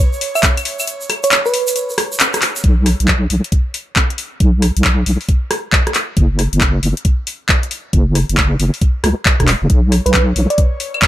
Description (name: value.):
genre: UK garage, two-step garage.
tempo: 136 BPM.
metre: 4/4.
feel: swing 65% on 16ths.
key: unclear.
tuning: A4 = 441 Hz.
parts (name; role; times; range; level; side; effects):
airy breathy pad; sustained chords; 0.0-2.6, 9.9-11.1 s; C#5; -30 LUFS; right 2 dB; chorus, sidechain pumping.
egg shaker; percussion; 0.1-2.6 s; none; -24 LUFS; right 2 dB; none.
house drum kit; drums; 0.2-11.1 s; claves, handclaps, hi-hat, rim click; -16 LUFS; left 1 dB; none.
bell-like FM electric piano; melody; 0.4-1.9, 10.1-10.6 s; B4 to E5; -19 LUFS; right 3 dB; chorus, digital delay.
electronic kick drum; drums; 0.4-11.1 s; none; -14 LUFS; equal; none.
deep soft wobble bass; bass; 2.6-10.5 s; E1 to C#2; -14 LUFS; equal; chorus.
room: little or no reverb.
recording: none.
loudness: -13 LUFS.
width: side -14 dB against mid.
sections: 0.0-2.6 A section; 2.6-11.1 B section.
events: drop 0.0-2.6; kick drops out 0.9-2.6; band accent 2.2.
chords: 0.0 N.C.; 6.2 F#5; 9.7 Bsus2.